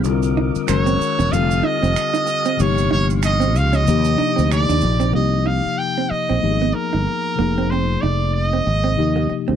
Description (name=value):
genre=R&B, neo-soul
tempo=94 BPM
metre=4/4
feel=swing 58% on 16ths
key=Eb major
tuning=A4 = 441 Hz
part: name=tine electric piano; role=accompaniment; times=0.0-9.6 s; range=C3 to Bb4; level=-23 LUFS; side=left 12 dB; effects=none
part: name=percussive tonewheel organ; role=sustained chords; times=0.0-5.1 s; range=Eb4 to Fb6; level=-31 LUFS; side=right 1 dB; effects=fast rotary speaker
part: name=fretless electric bass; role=bass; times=0.0-9.6 s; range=Fb1 to Eb2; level=-19 LUFS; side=right 1 dB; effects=none
part: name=tube shaker and finger snaps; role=percussion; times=0.0-5.1 s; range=none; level=-31 LUFS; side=right 18 dB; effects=none
part: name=vintage hollow-body jazz guitar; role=second line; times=0.4-9.6 s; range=Bb3 to Eb4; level=-24 LUFS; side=right 9 dB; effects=none
part: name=brilliant trumpet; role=melody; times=0.7-9.3 s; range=Bb4 to G5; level=-22 LUFS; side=right 2 dB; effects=none
room=light reverb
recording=dry, close 1970s-style studio recording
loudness=-16 LUFS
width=side -9 dB against mid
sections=0.0-5.1 A section; 5.1-9.6 B section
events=none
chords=0.0 Cm11; 0.7 Gb9; 1.3 F9; 2.6 Eb13/G; 3.9 Ebmaj7; 5.1 Cm7; 6.4 Abm6; 7.4 Fm7; 9.0 Ebmaj9